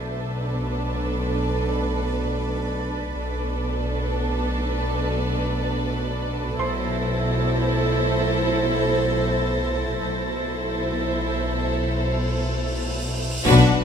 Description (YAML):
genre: cinematic, suspense film score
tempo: free time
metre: none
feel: none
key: unclear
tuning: A4 = 440 Hz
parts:
  - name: warm studio violin section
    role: melody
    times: 0.0-13.8 s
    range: B4 to C5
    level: -32 LUFS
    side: right 1 dB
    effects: none
  - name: warm studio violin section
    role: second line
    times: 0.0-13.8 s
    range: F#4 to A4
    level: -30 LUFS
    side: right 1 dB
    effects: none
  - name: rich studio viola section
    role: accompaniment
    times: 0.0-13.8 s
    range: D4 to E4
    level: -30 LUFS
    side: right 1 dB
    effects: none
  - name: dark French horn section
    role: sustained chords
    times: 0.0-13.8 s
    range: F#3 to C5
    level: -32 LUFS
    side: equal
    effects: none
  - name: shimmering ambient pad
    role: sustained chords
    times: 0.0-13.8 s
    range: A4 to A5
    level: -34 LUFS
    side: right 1 dB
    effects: chorus, built-in reverb, phaser
  - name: dark studio cello section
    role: bass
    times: 0.0-13.8 s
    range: B2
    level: -28 LUFS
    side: equal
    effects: none
  - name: rich chamber double bass section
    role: bass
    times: 0.0-13.8 s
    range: B1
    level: -28 LUFS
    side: left 1 dB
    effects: none
  - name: saturated sub bass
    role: drone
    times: 0.0-13.8 s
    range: B1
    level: -31 LUFS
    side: equal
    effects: none
  - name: bright grand piano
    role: texture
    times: 6.6-13.5 s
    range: C5 to C6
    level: -33 LUFS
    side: right 3 dB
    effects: none
  - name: warm studio violin section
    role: texture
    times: 6.6-13.8 s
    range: F#6 to A#6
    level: -34 LUFS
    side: left 1 dB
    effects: none
  - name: cymbal swell and impact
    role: sound effects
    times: 12.0-13.8 s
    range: none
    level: -31 LUFS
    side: equal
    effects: none
  - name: taiko ensemble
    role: drums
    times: 13.5-13.8 s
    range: none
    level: -33 LUFS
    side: left 1 dB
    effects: none
room: moderate stone room reverb, RT60 1.3 s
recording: none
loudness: -21 LUFS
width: side -7 dB against mid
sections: 0.0-13.5 A section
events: cymbal swell 12.0-13.5; band accent 13.5-13.8; impact 13.5-13.8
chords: 0.0 Bm7; 6.6 Amadd9/B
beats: free time